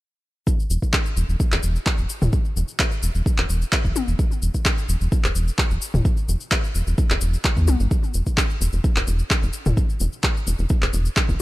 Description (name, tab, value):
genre	minimal techno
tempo	129 BPM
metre	4/4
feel	straight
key	unclear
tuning	A4 = 440 Hz
part	electronic kick drum	drums	0.5-11.4 s	none	-21 LUFS	equal	none
part	cabasa	percussion	0.5-11.4 s	none	-33 LUFS	left 4 dB	none
part	rubbery square bass	bass	0.7-11.4 s	E1 to E2	-21 LUFS	equal	tube saturation, sidechain pumping
part	electronic handclaps	drums	0.9-11.3 s	none	-25 LUFS	equal	none
part	electronic toms	percussion	2.2-9.8 s	none	-24 LUFS	left 2 dB	overdrive, digital delay
room	little or no reverb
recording	none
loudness	-19 LUFS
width	side -18 dB against mid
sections	0.5-11.4 A section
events	none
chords	none